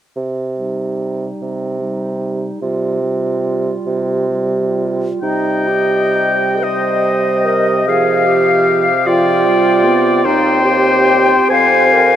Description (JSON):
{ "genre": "classical, slow romantic movement for wind quintet", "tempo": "41-51 BPM (dotted quarters)", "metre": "6/8", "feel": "rubato", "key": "C minor", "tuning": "A4 = 438 Hz", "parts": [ { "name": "mellow bassoon", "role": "bass", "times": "0.2-12.2 s", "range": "Eb2 to C3", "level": "-18 LUFS", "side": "right 2 dB", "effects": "none" }, { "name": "mellow French horn", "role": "accompaniment", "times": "0.6-12.2 s", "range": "F3 to C4", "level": "-24 LUFS", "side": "equal", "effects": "none" }, { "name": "mellow clarinet", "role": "accompaniment", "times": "0.6-12.2 s", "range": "Eb4 to C5", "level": "-18 LUFS", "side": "right 3 dB", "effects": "none" }, { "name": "silver concert flute", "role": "melody", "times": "5.2-12.2 s", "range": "Eb5 to G5", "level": "-16 LUFS", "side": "left 5 dB", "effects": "none" }, { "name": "bright oboe", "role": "second line", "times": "5.2-12.2 s", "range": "C5 to Ab5", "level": "-16 LUFS", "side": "left 2 dB", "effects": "none" } ], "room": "wet huge ambient reverb, RT60 9.1 s", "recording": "in a vast, echoing space", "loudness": "-12 LUFS", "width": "side -10 dB against mid", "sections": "0.2-5.2 A section; 5.2-12.2 B section", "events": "none", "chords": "0.2 Cm; 2.6 Csus4; 5.2 Cm; 7.9 G7/C; 10.3 Cm/Eb; 11.5 Fmadd11" }